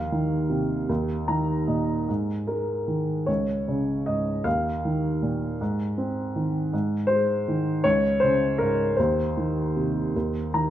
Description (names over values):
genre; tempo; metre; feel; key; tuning
classical, lyrical solo piano; 52 BPM (dotted quarters); 6/8; uneven beats, rubato; Ab major; A4 = 441 Hz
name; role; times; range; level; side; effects
warm upright piano; solo; 0.0-10.7 s; Db2 to Bb5; -23 LUFS; equal; none
room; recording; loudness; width
moderate recital hall reverb, RT60 1.3 s; none; -23 LUFS; side -11 dB against mid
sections
0.0-10.7 A section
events
upright piano fill 0.9-2.1, 10.1-10.7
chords
0.0 Cmadd11/Eb; 0.9 Eb5; 2.1 Absus2; 3.3 Db5; 4.5 Eb5; 5.6 Ab; 7.8 Db5; 9.0 Cm/Eb; 10.1 Eb5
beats
0.89 | 2.09 3.29 | 4.46 5.60 | 6.73 7.85 | 8.98 10.15